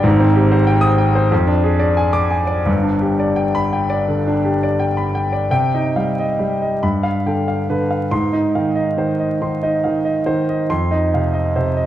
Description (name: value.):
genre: classical, romantic character piece for solo piano.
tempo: 83-96 BPM.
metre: 4/4.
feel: rubato.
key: C minor.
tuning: A4 = 442 Hz.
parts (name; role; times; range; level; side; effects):
clear concert grand piano; solo; 0.0-11.9 s; G1 to Eb6; -15 LUFS; equal; none.
room: moderate recital hall reverb, RT60 1.7 s.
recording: dark, warm production, vinyl crackle.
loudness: -15 LUFS.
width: side -12 dB against mid.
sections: 0.0-5.5 A section; 5.5-11.9 B section.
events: none.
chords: 0.0 Abmaj7; 1.3 Ddim/F; 2.7 G; 5.5 Cm; 6.8 G7; 8.1 Ab; 10.7 F5.